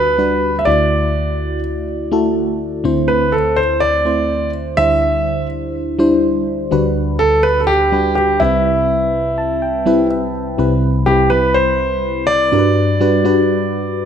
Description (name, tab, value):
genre	pop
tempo	124 BPM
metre	4/4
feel	straight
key	unclear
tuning	A4 = 441 Hz
part	clear concert grand piano	melody	0.0-14.1 s	E4 to E5	-15 LUFS	right 1 dB	ping-pong delay
part	mellow FM electric piano	accompaniment	0.0-14.1 s	C2 to B5	-16 LUFS	left 1 dB	chorus, phaser
room	moderate lush hall reverb, RT60 2.2 s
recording	none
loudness	-13 LUFS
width	side -8 dB against mid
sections	0.0-10.6 A section; 10.6-14.1 B section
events	FM electric piano fill 9.1-10.6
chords	0.0 Gmaj7/D; 0.7 Dadd9; 2.8 Am/D; 4.8 Cadd9/D; 6.7 Gmaj7/D; 8.4 Cmaj7; 12.5 Gmaj7